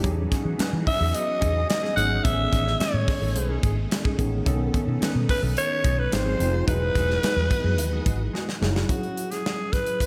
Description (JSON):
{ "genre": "polished 1980s jazz-funk pop", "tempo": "108 BPM", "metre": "4/4", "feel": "straight", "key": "E major", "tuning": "A4 = 439 Hz", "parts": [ { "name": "tine electric piano", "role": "accompaniment", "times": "0.0-10.1 s", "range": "C#3 to A4", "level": "-33 LUFS", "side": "equal", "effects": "overdrive, analog chorus, slapback echo" }, { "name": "phased string machine", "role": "sustained chords", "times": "0.0-8.9 s", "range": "E3 to D#5", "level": "-40 LUFS", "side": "equal", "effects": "ensemble chorus, phaser" }, { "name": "mellow electric guitar", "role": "riff", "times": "0.0-8.9 s", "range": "G#3 to B4", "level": "-37 LUFS", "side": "equal", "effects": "lush chorus, slapback echo" }, { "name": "vintage muted fingered electric bass", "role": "bass", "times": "0.0-8.8 s", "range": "E1 to E3", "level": "-28 LUFS", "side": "equal", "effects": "none" }, { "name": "modern studio drum kit", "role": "drums", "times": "0.0-10.1 s", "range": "hi-hat, kick drum, snare drum", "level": "-29 LUFS", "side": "equal", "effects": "none" }, { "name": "raspy alto saxophone", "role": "melody", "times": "0.9-10.1 s", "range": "F#4 to F#5", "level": "-28 LUFS", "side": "equal", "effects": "slapback echo" } ], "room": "moderate scoring stage reverb, RT60 1.6 s, studio ambience", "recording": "big arena sound", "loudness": "-24 LUFS", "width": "mono", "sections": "0.0-8.9 A section; 8.9-10.1 B section", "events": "drum fill 8.3-8.9", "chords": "0.0 Emaj13; 2.2 Amaj9#11; 4.5 B9; 6.1 G#6; 6.7 Emaj9; 8.9 E69" }